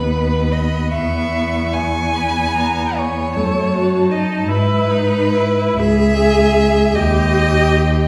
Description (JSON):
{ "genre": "classical, slow romantic movement for string quartet", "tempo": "44-54 BPM (dotted quarters)", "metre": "6/8", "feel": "rubato", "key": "unclear", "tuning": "A4 = 441 Hz", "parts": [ { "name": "warm violin", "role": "melody", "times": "0.0-8.1 s", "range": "G5 to C#6", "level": "-29 LUFS", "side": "equal", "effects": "none" }, { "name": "rich violin", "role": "second line", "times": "0.0-8.1 s", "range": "B4 to G#5", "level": "-22 LUFS", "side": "equal", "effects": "none" }, { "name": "rich viola", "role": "accompaniment", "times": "0.0-8.1 s", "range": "A3 to G#4", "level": "-22 LUFS", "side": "equal", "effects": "none" }, { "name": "warm cello", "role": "bass", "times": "0.0-7.9 s", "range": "C#2 to G#2", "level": "-20 LUFS", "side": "equal", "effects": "none" } ], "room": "wet recital hall reverb, RT60 1.4 s", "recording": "heard from further back in the room", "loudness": "-16 LUFS", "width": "mono", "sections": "0.0-8.1 A section", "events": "none", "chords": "0.0 B/D#; 0.9 E; 3.4 F#m6; 4.5 Emaj7/G#; 5.8 C#m; 7.0 D#" }